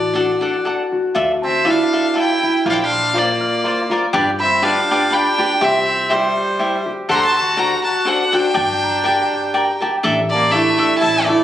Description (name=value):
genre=mexican folk, mariachi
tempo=122 BPM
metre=3/4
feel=swing 53% on 8ths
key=D minor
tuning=A4 = 440 Hz
part: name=bright violin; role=melody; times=0.0-11.4 s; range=C5 to C6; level=-18 LUFS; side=equal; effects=none
part: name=concert harp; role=arpeggios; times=0.0-11.4 s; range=E4 to G6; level=-20 LUFS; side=equal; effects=none
part: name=upright bass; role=bass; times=0.0-11.3 s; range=G1 to D2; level=-30 LUFS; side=left 1 dB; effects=none
part: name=cavaquinho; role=accompaniment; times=0.1-11.4 s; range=D4 to A5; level=-20 LUFS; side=left 1 dB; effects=none
part: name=clear trumpet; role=second line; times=1.4-11.4 s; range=G3 to A4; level=-23 LUFS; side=right 2 dB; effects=none
room=moderate recital hall reverb, RT60 1.4 s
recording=recorded on a phone in the room, club reverb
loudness=-14 LUFS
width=side -11 dB against mid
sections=0.0-1.2 A section; 1.2-11.4 B section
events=none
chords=0.0 D; 1.2 Dmadd9; 2.7 Bbadd9; 4.1 G; 5.6 C; 7.1 D7; 8.6 Gmadd9; 10.0 Asus4